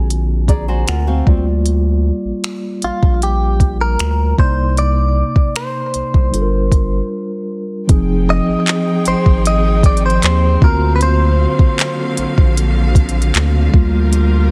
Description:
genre	contemporary R&B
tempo	77 BPM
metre	4/4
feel	straight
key	unclear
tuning	A4 = 440 Hz
part	direct-recorded clean electric guitar	melody	0.0-12.5 s	F4 to Eb5	-22 LUFS	equal	delay
part	mellow tine electric piano	accompaniment	0.0-14.5 s	C3 to A#5	-22 LUFS	equal	none
part	round analog bass	bass	0.0-14.5 s	F1 to Eb2	-18 LUFS	equal	none
part	smooth R&B drum kit	drums	0.1-14.3 s	finger snaps, handclaps, hi-hat, kick drum	-15 LUFS	equal	vintage 12-bit sampler grit, soft clipping on snare
part	nylon-string guitar	arpeggios	0.5-1.4 s	C4 to D5	-26 LUFS	equal	delay
part	warm studio string section	sustained chords	7.9-14.5 s	D3 to G5	-26 LUFS	equal	none
room	little or no reverb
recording	dense, heavily limited modern master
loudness	-15 LUFS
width	mono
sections	0.0-7.9 A section; 7.9-14.5 B section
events	tine electric piano fill 0.1-1.7; break 7.1-7.9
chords	0.0 D7alt; 1.3 Gm7; 4.4 Cm9; 6.3 Gm7; 7.9 Fm7; 10.6 D7alt; 13.7 Gm7

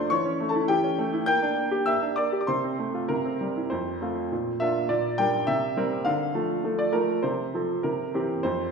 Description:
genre	classical-period piano sonatina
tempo	101 BPM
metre	2/4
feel	straight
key	F major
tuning	A4 = 442 Hz
part	bright baby grand piano	solo	0.0-8.7 s	F2 to G6	-24 LUFS	equal	none
room	wet recital hall reverb, RT60 1.5 s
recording	recorded in a church or concert hall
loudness	-24 LUFS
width	side -5 dB against mid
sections	0.0-3.7 A section; 3.7-8.7 B section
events	none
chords	0.1 A7/E; 1.3 Gm/Bb; 2.5 F/C; 3.1 C; 3.7 F; 4.3 Bb; 4.9 Gm/Bb; 5.5 C7; 6.1 Dm; 7.2 F/C; 7.8 C

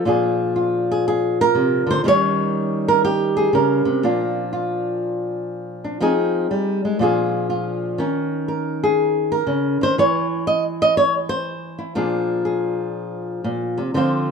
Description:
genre	solo jazz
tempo	121 BPM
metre	4/4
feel	swing 66% on 8ths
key	Bb mixolydian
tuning	A4 = 444 Hz
part	flamenco guitar	solo	0.0-14.3 s	Bb2 to Eb5	-18 LUFS	equal	none
room	moderate echo chamber reverb, RT60 1.7 s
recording	dark, warm production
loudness	-18 LUFS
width	side -5 dB against mid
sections	0.1-14.3 A section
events	none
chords	0.1 Bb7; 2.0 Eb7; 4.0 Bb; 6.0 Fm7; 7.0 Bb7; 8.0 Eb5; 10.0 N.C.; 12.0 Bb7

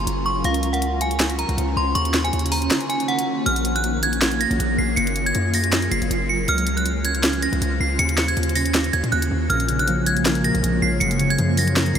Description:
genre	hip hop, trap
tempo	159 BPM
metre	4/4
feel	half-time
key	Bb minor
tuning	A4 = 438 Hz
part	metallic FM bell	melody	0.0-12.0 s	F5 to Db7	-23 LUFS	right 1 dB	chorus, tremolo, phaser
part	granular cloud pad	sustained chords	0.0-12.0 s	Bb3 to F4	-25 LUFS	equal	built-in reverb, analog chorus
part	hard-hitting 808-style bass	bass	0.0-12.0 s	Gb1 to Bb2	-24 LUFS	equal	none
part	trap drum kit	drums	0.1-12.0 s	handclaps, hi-hat, snare drum	-25 LUFS	equal	overdrive
part	concert harp	accompaniment	9.5-12.0 s	Gb2 to Bb3	-22 LUFS	left 1 dB	none
room	moderate huge ambient reverb, RT60 7.9 s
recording	dreamy mix soaked in reverb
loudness	-18 LUFS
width	side -8 dB against mid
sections	0.0-3.5 A section; 3.5-12.0 B section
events	kick muted 2.7-3.5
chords	0.4 Dbmaj7; 2.0 Ebm7; 3.5 Bbm7; 5.0 Gbmaj7; 6.5 Dbmaj7; 8.0 Ebm7; 9.5 Bbm7; 11.0 Gbmaj7

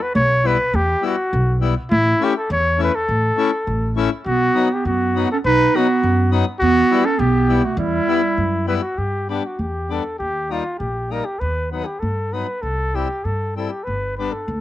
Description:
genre	alpine folk, alpine dance band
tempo	100 BPM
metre	2/4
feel	swing 53% on 8ths, uneven beats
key	E dorian, G major from 9.0 s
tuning	A4 = 442 Hz
part	mellow trumpet	melody	0.0-14.6 s	E4 to C#5	-20 LUFS	left 1 dB	none
part	upright bass	bass	0.1-14.6 s	G1 to G2	-21 LUFS	equal	transformer saturation
part	accordion	accompaniment	0.4-14.3 s	F#3 to E4	-24 LUFS	left 8 dB	cassette tape
part	clear clarinet	second line	4.3-8.6 s	G3 to D#4	-20 LUFS	right 6 dB	cassette tape
room	light reverb, small room ambience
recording	home recording on cassette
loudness	-17 LUFS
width	side -13 dB against mid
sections	0.0-9.0 A section; 9.0-14.6 B section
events	none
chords	0.0 Emadd9; 1.9 A; 4.3 B; 6.6 Emadd9; 9.0 G; 10.2 Eb; 11.4 B/D#; 12.6 C; 13.9 G

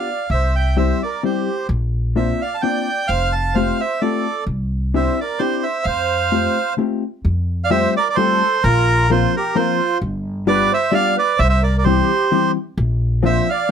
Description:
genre	musette waltz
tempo	130 BPM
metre	3/4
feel	swing 54% on 8ths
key	F major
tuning	A4 = 439 Hz
part	bandoneon	melody	0.0-13.7 s	Bb4 to A5	-19 LUFS	right 4 dB	none
part	accordion	second line	0.0-13.7 s	F4 to F5	-25 LUFS	right 5 dB	light tremolo tuning
part	hollow-body jazz guitar	accompaniment	0.0-13.7 s	E3 to Bb4	-20 LUFS	left 6 dB	none
part	upright bass	bass	0.3-13.4 s	F1 to F2	-19 LUFS	equal	none
room	light reverb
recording	close, detailed microphones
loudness	-16 LUFS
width	side -8 dB against mid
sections	0.0-7.2 A section; 7.2-13.7 A section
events	none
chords	0.3 C; 1.7 Bbadd9; 3.1 Fadd9; 4.5 Cadd9; 5.9 Fadd9; 8.6 Bbsus2; 10.0 G7; 11.4 C; 12.8 Bbadd9

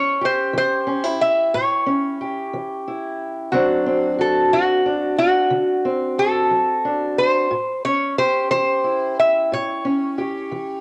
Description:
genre	acoustic country blues, solo or duo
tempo	60 BPM (dotted quarters)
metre	12/8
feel	straight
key	A mixolydian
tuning	A4 = 441 Hz
part	lap resonator guitar	melody	0.0-10.8 s	F#4 to E5	-21 LUFS	equal	cassette tape
part	fingerpicked steel-string acoustic guitar	accompaniment	0.0-10.8 s	A2 to G4	-25 LUFS	equal	cassette tape
room	light reverb, small room ambience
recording	home recording on cassette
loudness	-20 LUFS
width	mono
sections	0.0-10.8 A section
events	none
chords	0.0 A7; 3.5 D7; 7.5 A7

